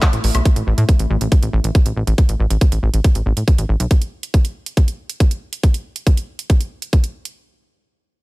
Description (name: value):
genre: psychedelic trance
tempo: 139 BPM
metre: 4/4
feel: straight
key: unclear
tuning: A4 = 440 Hz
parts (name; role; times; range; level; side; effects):
- overtone-sweeping drone; sustained chords; 0.0-0.5 s; A3 to E4; -31 LUFS; left 2 dB; chorus, built-in reverb, sidechain pumping
- drum and bass drum kit; drums; 0.0-7.3 s; handclaps, hi-hat, woodblock; -26 LUFS; right 2 dB; overdrive, small room reverb
- electronic kick drum; drums; 0.0-7.0 s; none; -13 LUFS; equal; overdrive, small room reverb
- plucky analog bass; bass; 0.1-3.9 s; A1 to A2; -17 LUFS; equal; none
room: little or no reverb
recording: none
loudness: -15 LUFS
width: side -22 dB against mid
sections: 0.0-7.4 A section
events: none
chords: 0.0 A5